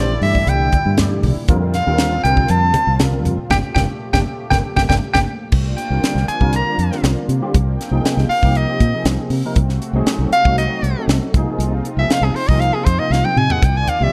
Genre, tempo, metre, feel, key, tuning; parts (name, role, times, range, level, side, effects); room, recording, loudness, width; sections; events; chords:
electric jazz fusion; 119 BPM; 4/4; straight; G minor; A4 = 445 Hz
edgy soprano saxophone; melody; 0.0-14.1 s; Ab4 to Bb5; -21 LUFS; equal; slapback echo
tine electric piano; accompaniment; 0.0-14.1 s; C3 to D5; -26 LUFS; equal; ensemble chorus
lush unison pad; sustained chords; 0.0-14.1 s; Bb2 to G5; -30 LUFS; equal; chorus
fingered electric bass; bass; 0.0-14.1 s; G1 to C3; -20 LUFS; equal
tight funk drum kit; drums; 0.2-14.0 s; crash cymbal, hi-hat, kick drum, snare drum, toms; -21 LUFS; equal
congas; percussion; 0.5-5.3, 13.6-14.0 s; -26 LUFS; equal
light reverb; dark, warm production; -17 LUFS; mono
0.0-5.5 A section; 5.5-14.1 A section
soprano saxophone solo 0.0-14.1; band accent 3.5-5.5; drum fill 5.3, 13.1-13.6
0.0 C13; 1.5 F7sus4; 3.5 Gm9; 5.5 C9sus4; 7.5 Fm11/C; 9.6 Ab7b9/C; 11.3 Ab69/C; 13.6 Cm11